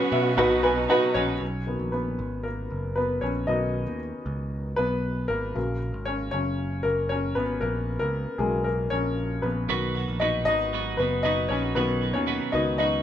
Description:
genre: piano-driven pop.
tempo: 116 BPM.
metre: 4/4.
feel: straight.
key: B major.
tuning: A4 = 440 Hz.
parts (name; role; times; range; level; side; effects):
clear upright piano; accompaniment; 0.0-13.0 s; B2 to G#5; -25 LUFS; left 2 dB; none.
warm symphonic string section; sustained chords; 0.0-1.4 s; B3 to F#4; -30 LUFS; right 1 dB; none.
twelve-string electric guitar; riff; 0.0-1.4, 9.7-13.0 s; B2 to F#4; -30 LUFS; right 7 dB; none.
picked electric bass; bass; 0.1-13.0 s; F#1 to B2; -30 LUFS; right 1 dB; none.
room: moderate studio reverb, RT60 0.5 s.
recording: band playing live in one room.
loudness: -24 LUFS.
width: side -10 dB against mid.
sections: 0.0-1.4 A section; 1.4-13.0 B section.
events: upright piano fill 0.0-1.4; upright piano solo 1.4-13.0.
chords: 0.4 B; 5.6 F#; 9.7 B.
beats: 0.38 0.90 | 1.42 1.93 2.45 2.97 | 3.49 4.00 4.52 5.04 | 5.56 6.07 6.59 7.11 | 7.63 8.14 8.66 9.18 | 9.70 10.21 10.73 11.25 | 11.77 12.28 12.80.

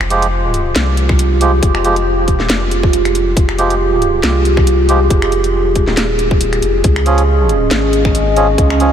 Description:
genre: deep dubstep.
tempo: 138 BPM.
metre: 4/4.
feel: swing 55% on 16ths, half-time.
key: F minor.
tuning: A4 = 440 Hz.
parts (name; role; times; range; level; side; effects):
dark analog pad; sustained chords; 0.0-8.9 s; Db4 to Eb5; -16 LUFS; right 1 dB; chorus, phaser.
saturated sub bass; bass; 0.0-8.9 s; Eb1 to Db2; -16 LUFS; equal; none.
garage drum kit; drums; 0.0-8.9 s; finger snaps, hi-hat, snare drum; -20 LUFS; left 1 dB; none.
melodica; stabs; 0.1-8.9 s; F3 to Ab4; -19 LUFS; right 3 dB; vintage 12-bit sampler grit, dub echo.
electronic kick drum; drums; 1.1-8.7 s; none; -14 LUFS; equal; none.
room: moderate huge ambient reverb, RT60 4.8 s.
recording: dreamy mix soaked in reverb.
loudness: -11 LUFS.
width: side -9 dB against mid.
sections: 0.0-8.9 A section.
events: none.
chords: 0.0 Fmadd9; 6.8 Db.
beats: 0.32 0.76 1.19 | 1.63 2.06 2.50 2.93 | 3.37 3.80 4.24 4.67 | 5.11 5.54 5.97 6.41 | 6.84 7.28 7.71 8.15 | 8.58.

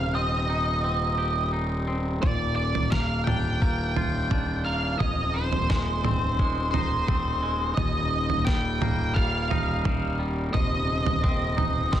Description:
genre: post-rock.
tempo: 87 BPM.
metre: 4/4.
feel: straight.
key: Eb major.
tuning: A4 = 437 Hz.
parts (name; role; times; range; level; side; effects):
octave-fuzz lead guitar; melody; 0.0-12.0 s; C5 to G5; -28 LUFS; right 1 dB; distortion, digital delay.
twangy electric guitar; arpeggios; 0.0-12.0 s; Eb2 to G4; -32 LUFS; left 2 dB; digital delay.
fuzz fingered electric bass; bass; 0.0-12.0 s; Eb1; -28 LUFS; equal; overdrive.
dusty soul sampler-style drum kit; drums; 2.2-12.0 s; kick drum, snare drum, toms; -26 LUFS; right 1 dB; none.
room: light reverb.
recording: none.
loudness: -23 LUFS.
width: side -11 dB against mid.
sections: 0.0-12.0 A section.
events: none.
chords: 0.0 Cm/Eb; 2.2 Bb/Eb; 5.0 Fm7/Eb; 7.8 Eb; 10.5 Cm/Eb.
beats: 0.16 0.85 1.55 | 2.24 2.93 3.62 4.31 | 5.01 5.70 6.39 7.08 | 7.78 8.47 9.16 9.86 | 10.55 11.24 11.94.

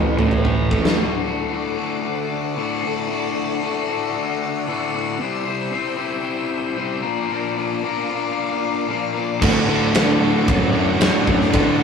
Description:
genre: quiet-loud alternative rock.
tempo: 114 BPM.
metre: 4/4.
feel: straight.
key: D mixolydian.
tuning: A4 = 440 Hz.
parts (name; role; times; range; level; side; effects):
cranked stack guitar; riff; 0.0-11.8 s; D2 to C5; -22 LUFS; left 5 dB; overdrive.
fuzz guitar; riff; 0.0-1.0, 9.4-11.8 s; D2 to F#4; -21 LUFS; right 4 dB; distortion.
fuzz fingered electric bass; bass; 0.0-0.8, 9.4-11.8 s; D2 to D3; -22 LUFS; equal; overdrive.
big rock drum kit; drums; 0.2-1.0, 9.4-11.7 s; crash cymbal, kick drum, ride cymbal, snare drum, toms; -19 LUFS; equal; none.
phased string machine; sustained chords; 1.0-11.8 s; A4 to E6; -30 LUFS; left 1 dB; ensemble chorus, phaser.
distorted electric guitar; riff; 9.4-11.8 s; D2 to D3; -24 LUFS; left 1 dB; overdrive.
room: light reverb.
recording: rough rehearsal-room recording, tube saturation.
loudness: -18 LUFS.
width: side -6 dB against mid.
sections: 1.0-11.8 A section.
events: drum fill 0.5-1.0.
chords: 0.0 A5; 1.0 D; 5.2 C; 7.0 Bb; 9.4 D.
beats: 0.45 | 0.98 1.51 2.04 2.56 | 3.09 3.62 4.15 4.67 | 5.20 5.73 6.26 6.79 | 7.31 7.84 8.37 8.90 | 9.42 9.95 10.48 11.01 | 11.54.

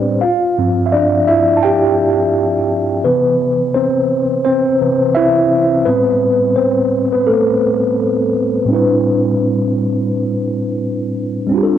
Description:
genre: hip hop.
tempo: 85 BPM.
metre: 4/4.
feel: swing 59% on 16ths.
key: A minor.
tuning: A4 = 444 Hz.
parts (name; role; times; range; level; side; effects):
mellow tine electric piano; solo; 0.0-11.8 s; G2 to A5; -12 LUFS; equal; medium stereo tremolo, low-pass filter, cassette tape, tape echo.
room: wet studio reverb, RT60 0.5 s.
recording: home recording on cassette.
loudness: -12 LUFS.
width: side -10 dB against mid.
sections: 0.0-8.7 A section; 8.7-11.8 B section.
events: tine electric piano solo 0.0-8.7.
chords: 0.2 G7sus4; 3.0 Cmaj7; 5.9 Am7; 8.7 Am11.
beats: | 0.22 0.93 1.63 2.34 | 3.04 3.75 4.46 5.16 | 5.87 6.57 7.28 7.99 | 8.69 9.40 10.10 10.81 | 11.51.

